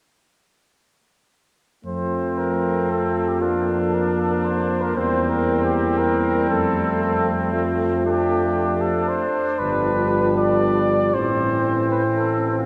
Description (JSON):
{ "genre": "classical, brass quintet", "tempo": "116 BPM", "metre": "3/4", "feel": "straight", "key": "F major", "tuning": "A4 = 445 Hz", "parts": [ { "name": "warm French horn", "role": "accompaniment", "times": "1.8-12.7 s", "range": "G3 to C4", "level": "-29 LUFS", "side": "equal", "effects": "none" }, { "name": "mellow trumpet", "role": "melody", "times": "1.9-12.7 s", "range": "F4 to D5", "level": "-26 LUFS", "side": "equal", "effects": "none" }, { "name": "brilliant trumpet", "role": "second line", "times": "1.9-12.7 s", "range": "C4 to D4", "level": "-29 LUFS", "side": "equal", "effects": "none" }, { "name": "clear trombone", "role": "accompaniment", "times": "1.9-12.7 s", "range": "E3 to G3", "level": "-27 LUFS", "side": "equal", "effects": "none" }, { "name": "warm tuba", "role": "bass", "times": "1.9-12.7 s", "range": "G1 to F2", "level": "-28 LUFS", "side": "equal", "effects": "none" } ], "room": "wet church reverb, RT60 2.8 s", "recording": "heard from further back in the room", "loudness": "-21 LUFS", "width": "mono", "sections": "1.9-12.7 A section", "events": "none", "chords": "1.9 F; 3.4 Bb/F; 5.0 C7/E; 6.5 F; 8.0 Dm/F; 9.6 G7; 11.1 Am" }